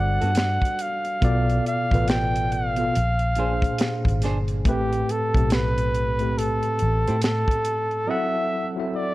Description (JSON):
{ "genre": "R&B, neo-soul", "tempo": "70 BPM", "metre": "4/4", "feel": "swing 62% on 16ths", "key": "unclear", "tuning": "A4 = 440 Hz", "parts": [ { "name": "clear flugelhorn", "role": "melody", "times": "0.0-9.1 s", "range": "G4 to G5", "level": "-25 LUFS", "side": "right 1 dB", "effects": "none" }, { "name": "tine electric piano", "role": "accompaniment", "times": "0.0-9.1 s", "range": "A2 to F#5", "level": "-27 LUFS", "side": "equal", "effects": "overdrive, medium stereo tremolo" }, { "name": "vintage muted fingered electric bass", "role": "bass", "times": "0.0-7.4 s", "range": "G1 to A2", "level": "-24 LUFS", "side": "equal", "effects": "none" }, { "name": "flamenco guitar", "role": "second line", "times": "0.2-7.2 s", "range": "B3 to B#4", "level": "-35 LUFS", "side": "right 4 dB", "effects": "none" }, { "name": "tight funk drum kit", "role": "drums", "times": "0.2-8.1 s", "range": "hi-hat, kick drum, snare drum", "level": "-24 LUFS", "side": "equal", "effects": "none" } ], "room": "small room ambience", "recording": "worn, warbling old tape, cassette tape, warbly pitch drift", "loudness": "-20 LUFS", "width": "side -18 dB against mid", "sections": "0.0-9.1 A section", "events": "none", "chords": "0.0 Gmaj9; 1.2 Bm7b5; 2.9 A#9; 4.7 Am7; 8.1 F#m7b5" }